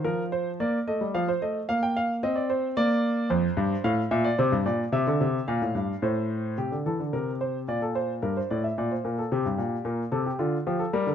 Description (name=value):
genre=classical, baroque-style two-part invention for grand piano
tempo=110 BPM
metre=3/4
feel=straight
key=Bb major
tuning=A4 = 440 Hz
part: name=clear grand piano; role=solo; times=0.0-11.1 s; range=F2 to G5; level=-24 LUFS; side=equal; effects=none
room=light reverb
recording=close, detailed microphones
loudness=-24 LUFS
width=side -8 dB against mid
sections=0.1-6.6 A section; 6.6-11.1 B section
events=none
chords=0.1 Bb/F; 1.1 F7; 1.7 Bb; 3.3 F; 4.4 C5; 4.9 F5/C; 6.0 Am; 6.6 C7sus2; 7.7 Bbmaj7; 8.2 Edim/G (rootless); 9.3 Gmadd11; 9.9 Bb